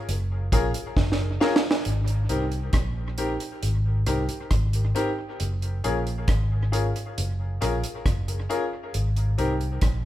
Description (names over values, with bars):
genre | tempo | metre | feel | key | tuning
lovers rock reggae | 68 BPM | 4/4 | straight | Ab major | A4 = 441 Hz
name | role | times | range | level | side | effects
vintage muted fingered electric bass | bass | 0.1-10.1 s | Gb1 to C2 | -25 LUFS | equal | none
deep reggae drum kit | drums | 0.1-10.0 s | hi-hat, kick drum, rim click, snare drum | -25 LUFS | right 1 dB | dub echo
clear grand piano | accompaniment | 0.5-9.5 s | C4 to Bb4 | -29 LUFS | left 2 dB | dub echo
room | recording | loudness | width
moderate large studio reverb, RT60 1.1 s | band playing live in one room | -23 LUFS | side -14 dB against mid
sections
0.0-1.8 A section; 1.8-10.1 B section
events
drum fill 1.0-1.8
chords
0.0 Gbmaj7; 1.8 Abmaj7; 5.4 Gbmaj7; 8.9 Ab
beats
0.08 0.96 | 1.85 2.73 3.62 4.51 | 5.39 6.28 7.17 8.05 | 8.94 9.82